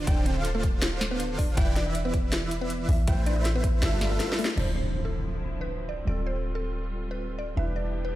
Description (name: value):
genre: future bass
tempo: 160 BPM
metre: 4/4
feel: swing 54% on 16ths, half-time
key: D dorian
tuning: A4 = 445 Hz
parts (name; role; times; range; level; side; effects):
- mallet-like synth pluck; melody; 0.0-8.2 s; A3 to E5; -34 LUFS; equal; chorus, phaser, cassette tape, sidechain pumping, ping-pong delay
- wide unison pluck; arpeggios; 0.0-4.4 s; E5 to G5; -40 LUFS; right 2 dB; vintage 12-bit sampler grit, sidechain pumping
- supersaw chords; riff; 0.0-4.4 s; D3 to G5; -32 LUFS; right 1 dB; sidechain pumping, ping-pong delay
- warm 808-style bass; bass; 0.0-8.2 s; D1 to A1; -29 LUFS; equal; sidechain pumping
- electronic kick drum; drums; 0.1-3.7 s; none; -25 LUFS; equal; none
- trap drum kit; drums; 0.1-4.7 s; crash cymbal, hi-hat, snare drum; -31 LUFS; equal; none
- glassy digital keys; accompaniment; 4.6-8.2 s; F3 to C5; -37 LUFS; right 2 dB; chorus, sidechain pumping
- rich studio string section; sustained chords; 4.6-8.2 s; D3 to G4; -41 LUFS; left 1 dB; sidechain pumping, low-pass filter
- impact; sound effects; 4.6-6.1 s; none; -35 LUFS; equal; none
room: digital ambience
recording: played on a big sound system in a bare room, stone room reverb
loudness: -25 LUFS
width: side -15 dB against mid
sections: 0.0-4.6 A section; 4.6-8.2 B section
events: drop 0.0-4.6; drum fill 4.2-4.6; band accent 4.4; impact 4.6-6.1; filter sweep on string section 4.6-8.2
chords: 0.1 G9sus4/D; 1.6 Em7; 2.9 Am9; 3.8 G13; 4.6 Dm9; 6.1 G9sus4/D; 7.6 Em7